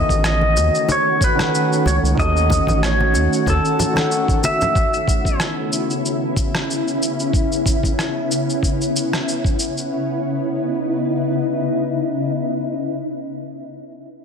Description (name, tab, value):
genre	sunset chillout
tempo	93 BPM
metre	4/4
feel	swing 54% on 16ths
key	C# minor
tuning	A4 = 440 Hz
part	pedal steel guitar	melody	0.0-5.4 s	A4 to E5	-20 LUFS	equal	ping-pong delay
part	dark baby grand piano	accompaniment	0.0-4.8 s	D#3 to F#5	-24 LUFS	moving between left 4 dB and right 6 dB	auto-pan, ping-pong delay
part	shimmering ambient pad	sustained chords	0.0-13.3 s	C#3 to F#4	-21 LUFS	left 1 dB	chorus, built-in reverb
part	round analog bass	bass	0.0-3.6 s	A1 to D#2	-18 LUFS	equal	none
part	electronic kick drum	drums	0.1-9.6 s	none	-20 LUFS	equal	overdrive, studio reverb
part	electronic shaker and rim click	drums	0.1-9.9 s	none	-25 LUFS	equal	overdrive, studio reverb
part	congas and bongos	percussion	0.4-4.7 s	none	-25 LUFS	left 1 dB	none
room	moderate plate reverb, RT60 1.8 s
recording	dense, heavily limited modern master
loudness	-16 LUFS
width	side -6 dB against mid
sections	0.0-9.9 A section; 9.9-12.5 B section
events	none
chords	0.0 D#m7b5; 4.8 C#m7; 9.9 C#m9